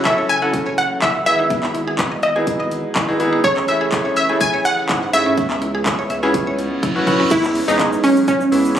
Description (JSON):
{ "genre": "dance-pop", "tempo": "124 BPM", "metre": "4/4", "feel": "straight", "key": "E major", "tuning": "A4 = 437 Hz", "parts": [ { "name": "analog pluck", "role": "melody", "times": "0.0-8.8 s", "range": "C#4 to G#5", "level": "-17 LUFS", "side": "equal", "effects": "chorus, digital delay" }, { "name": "mellow French horn section", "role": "sustained chords", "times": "0.0-8.8 s", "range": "B2 to G#4", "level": "-30 LUFS", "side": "equal", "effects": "stereo widening, sidechain pumping" }, { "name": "mallet-like synth pluck", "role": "arpeggios", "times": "0.0-7.3 s", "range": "A3 to G#5", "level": "-26 LUFS", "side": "right 1 dB", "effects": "chorus, sidechain pumping, digital delay" }, { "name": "round analog bass", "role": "bass", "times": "0.0-8.8 s", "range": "F#1 to G#2", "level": "-29 LUFS", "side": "equal", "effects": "sidechain pumping" }, { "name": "bright grand piano", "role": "accompaniment", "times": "0.1-8.8 s", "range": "E3 to A4", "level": "-21 LUFS", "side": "equal", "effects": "sidechain pumping" }, { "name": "house drum kit", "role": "drums", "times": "0.1-8.8 s", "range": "crash cymbal, handclaps, hi-hat, kick drum, shaker, toms", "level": "-22 LUFS", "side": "equal", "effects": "none" }, { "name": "reverse cymbal", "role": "sound effects", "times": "6.5-7.3 s", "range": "none", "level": "-28 LUFS", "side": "right 4 dB", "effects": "none" } ], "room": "moderate lush hall reverb, RT60 2.1 s", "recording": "recorded on a phone in the room, club reverb, compression", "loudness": "-15 LUFS", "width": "side -10 dB against mid", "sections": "0.0-7.3 A section; 7.3-8.8 B section", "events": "reverse cymbal 6.5-7.3; drum fill 6.8-7.3", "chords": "0.0 F#m7; 1.3 Emaj7/G#; 3.4 Amaj7; 5.4 C#m7; 7.3 E6", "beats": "0.05 0.54 1.02 | 1.50 1.99 2.47 2.96 | 3.44 3.92 4.41 4.89 | 5.38 5.86 6.34 6.83 | 7.31 7.79 8.28 8.76" }